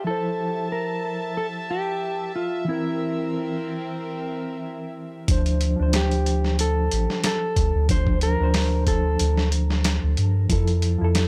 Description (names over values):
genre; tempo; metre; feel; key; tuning
trip hop; 92 BPM; 4/4; swing 54% on 16ths; D minor; A4 = 440 Hz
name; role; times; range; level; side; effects
mellow electric guitar; melody; 0.0-9.5 s; E4 to C5; -31 LUFS; equal; tape echo
mellow reed electric piano; accompaniment; 0.0-11.3 s; E3 to C5; -31 LUFS; equal; fast tremolo, harmonic tremolo
warm studio violin section; sustained chords; 0.0-5.3 s; C4 to A5; -35 LUFS; equal; none
bowed-like drone; texture; 0.0-5.3 s; E5; -47 LUFS; equal; none
soft dub sub bass; bass; 5.3-11.3 s; A1 to G2; -24 LUFS; equal; none
dusty soul sampler-style drum kit; drums; 5.3-11.3 s; hi-hat, kick drum, snare drum; -26 LUFS; equal; overdrive
room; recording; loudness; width
little or no reverb; none; -23 LUFS; mono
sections
0.0-5.3 A section; 5.3-11.3 B section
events
filter sweep on violin section 0.0-5.3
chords
0.1 Fmaj7; 2.7 C7; 5.3 Dm7; 10.5 Fmaj7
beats
| 0.07 0.72 1.37 2.02 | 2.67 3.33 3.98 4.63 | 5.28 5.93 6.59 7.24 | 7.89 8.54 9.20 9.85 | 10.50 11.15